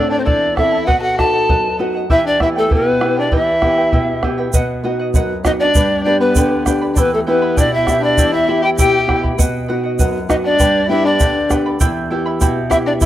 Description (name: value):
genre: andean folk, Andean ensemble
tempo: 99 BPM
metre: 2/4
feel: straight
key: E harmonic minor, E minor from 4.5 s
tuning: A4 = 440 Hz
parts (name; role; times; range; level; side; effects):
- bright reedy polished pan flute; melody; 0.0-13.1 s; A4 to A5; -16 LUFS; right 1 dB; tape echo
- warm violin; second line; 0.0-13.1 s; A3 to A4; -20 LUFS; left 5 dB; none
- charango; accompaniment; 0.0-13.1 s; E4 to B5; -24 LUFS; right 1 dB; none
- nylon-string guitar; accompaniment; 0.0-13.1 s; E2 to A4; -20 LUFS; equal; none
- bombo; percussion; 0.3-13.1 s; none; -18 LUFS; right 1 dB; none
- egg shaker; percussion; 4.5-13.1 s; none; -26 LUFS; right 8 dB; none
room: little or no reverb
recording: dry, close 1970s-style studio recording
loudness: -13 LUFS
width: side -13 dB against mid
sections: 0.0-4.5 A section; 4.5-13.1 B section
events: none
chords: 0.0 Am; 0.9 B; 2.1 Em; 4.5 B; 5.8 G; 7.0 Em; 9.4 B; 10.6 G; 11.8 Em